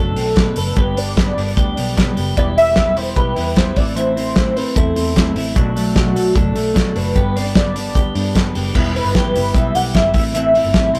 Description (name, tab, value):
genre	jangly indie pop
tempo	150 BPM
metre	4/4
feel	straight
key	E minor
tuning	A4 = 439 Hz
part	warm velvety synth lead	melody	0.0-10.9 s	F#4 to F#5	-22 LUFS	equal	chorus
part	mellow electric guitar	accompaniment	0.0-11.0 s	G2 to E4	-26 LUFS	equal	none
part	twelve-string electric guitar	arpeggios	0.0-11.0 s	E3 to A4	-28 LUFS	equal	none
part	vintage muted fingered electric bass	bass	0.0-11.0 s	E1 to G2	-26 LUFS	equal	none
part	cloth-damped thuddy drum kit	drums	0.2-11.0 s	crash cymbal, hi-hat, kick drum, snare drum	-20 LUFS	equal	none
room	moderate studio reverb, RT60 0.5 s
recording	rough rehearsal-room recording, tube saturation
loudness	-16 LUFS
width	mono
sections	0.0-8.8 A section; 8.8-11.0 B section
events	none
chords	0.0 Bm7; 0.8 G; 2.4 Em; 3.8 Am; 5.6 Bm7; 7.2 G; 8.8 Em; 10.1 Am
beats	0.37 | 0.77 1.17 1.57 1.97 | 2.37 2.77 3.16 3.56 | 3.96 4.36 4.76 5.16 | 5.56 5.96 6.36 6.76 | 7.16 7.55 7.95 8.35 | 8.75 9.15 9.55 9.95 | 10.35 10.74